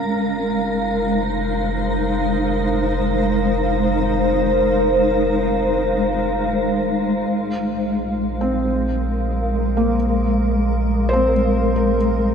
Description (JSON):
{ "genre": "ambient", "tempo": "66 BPM", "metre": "4/4", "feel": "straight", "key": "unclear", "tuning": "A4 = 439 Hz", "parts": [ { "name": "granular cloud pad", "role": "sustained chords", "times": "0.0-12.3 s", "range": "Ab3 to F5", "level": "-19 LUFS", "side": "equal", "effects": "built-in reverb" }, { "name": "warm sub bass", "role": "bass", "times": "0.0-12.3 s", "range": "F1 to Bb1", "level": "-24 LUFS", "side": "equal", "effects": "none" }, { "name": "wind-like tuned noise texture", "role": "texture", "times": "0.0-12.3 s", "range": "Bb4 to Bb5", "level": "-27 LUFS", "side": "left 1 dB", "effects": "built-in reverb" }, { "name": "felt-muted upright piano", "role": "arpeggios", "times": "8.4-12.3 s", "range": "Bb3 to C5", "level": "-22 LUFS", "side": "equal", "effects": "ping-pong delay" } ], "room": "wet lush hall reverb, RT60 2.6 s", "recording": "none", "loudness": "-17 LUFS", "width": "side -7 dB against mid", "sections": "0.0-7.3 A section; 7.3-12.3 B section", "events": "none", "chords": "0.0 Fm7; 7.3 Bb5" }